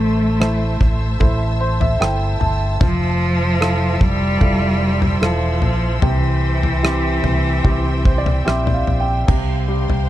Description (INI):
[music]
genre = pop ballad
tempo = 74 BPM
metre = 4/4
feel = straight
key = unclear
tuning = A4 = 440 Hz
[part]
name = clear cello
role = melody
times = 0.0-8.5 s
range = E3 to A3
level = -21 LUFS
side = equal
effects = none
[part]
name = clear concert grand piano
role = accompaniment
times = 0.0-10.1 s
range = C3 to A5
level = -22 LUFS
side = equal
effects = none
[part]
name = clear studio string section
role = sustained chords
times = 0.0-10.1 s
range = C5 to E6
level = -29 LUFS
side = equal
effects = none
[part]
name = fretless electric bass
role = bass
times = 0.0-10.1 s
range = E1 to C2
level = -20 LUFS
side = equal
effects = none
[part]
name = damped 70s drum kit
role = drums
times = 0.4-10.1 s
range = crash cymbal, kick drum, rim click, toms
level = -18 LUFS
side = equal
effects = none
[sound]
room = small room reverb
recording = dark, warm production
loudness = -15 LUFS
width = side -14 dB against mid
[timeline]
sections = 0.0-9.3 A section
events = grand piano fill 1.2-2.8, 7.6-9.3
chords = 0.0 Am; 2.8 Fmaj7; 6.0 C; 9.3 Csus4